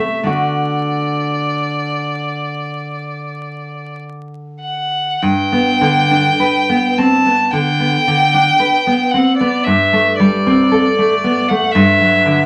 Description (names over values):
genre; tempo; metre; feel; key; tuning
romantic duo for violin and classical guitar; 47-60 BPM; 4/4; rubato; G major; A4 = 440 Hz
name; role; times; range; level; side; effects
rich violin; melody; 0.0-12.5 s; D5 to A5; -18 LUFS; equal; none
nylon-string guitar; accompaniment; 0.0-12.5 s; G2 to B4; -18 LUFS; equal; none
room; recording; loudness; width
wet club reverb, RT60 0.5 s; vinyl crackle; -14 LUFS; mono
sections
0.0-5.2 A section; 5.2-12.5 B section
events
none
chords
0.3 D; 5.2 G; 9.6 Am7/G; 11.7 D/G